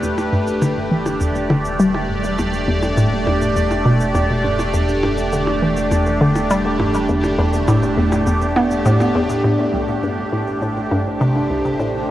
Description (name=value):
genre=ambient, sequencer-driven space music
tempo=102 BPM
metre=4/4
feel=straight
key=E minor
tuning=A4 = 438 Hz
part: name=evolving wavetable pad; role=sustained chords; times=0.0-12.1 s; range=A3 to D5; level=-19 LUFS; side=equal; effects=phaser, built-in reverb, shimmer reverb
part: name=hollow square pluck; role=riff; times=0.0-12.0 s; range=C2 to B3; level=-18 LUFS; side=equal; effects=chorus, tape echo
part: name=warm sub bass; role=bass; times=0.0-12.1 s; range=E1 to A1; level=-30 LUFS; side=equal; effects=tube saturation
part: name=cabasa and percussion blips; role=percussion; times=0.0-12.1 s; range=none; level=-31 LUFS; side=equal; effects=overdrive, tape echo
room=wet huge ambient reverb, RT60 8.5 s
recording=worn, warbling old tape, cassette tape, warbly pitch drift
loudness=-15 LUFS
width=side -13 dB against mid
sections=0.0-9.4 A section; 9.4-12.1 B section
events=filter sweep on synth arpeggio sound 0.0-9.4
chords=0.0 Em7; 9.4 Am7